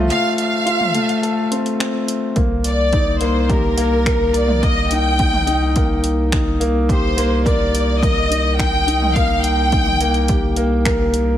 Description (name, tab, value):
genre	piano and strings electronica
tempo	106 BPM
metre	4/4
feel	straight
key	unclear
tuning	A4 = 440 Hz
part	dark baby grand piano	riff	0.0-11.4 s	A3 to C5	-19 LUFS	left 2 dB	digital delay
part	round analog bass	bass	0.0-11.4 s	C2	-20 LUFS	equal	sidechain pumping
part	rich studio violin section	melody	0.1-10.6 s	Bb4 to G5	-20 LUFS	equal	none
part	deep house drum kit	drums	0.1-11.3 s	finger snaps, hi-hat, toms	-25 LUFS	right 1 dB	overdrive, small room ambience
part	electronic kick drum	drums	2.4-11.0 s	none	-20 LUFS	equal	overdrive, small room ambience
room	light reverb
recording	none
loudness	-15 LUFS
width	side -11 dB against mid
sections	0.0-11.4 A section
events	break 0.1-2.4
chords	0.0 F/C; 2.4 Cm7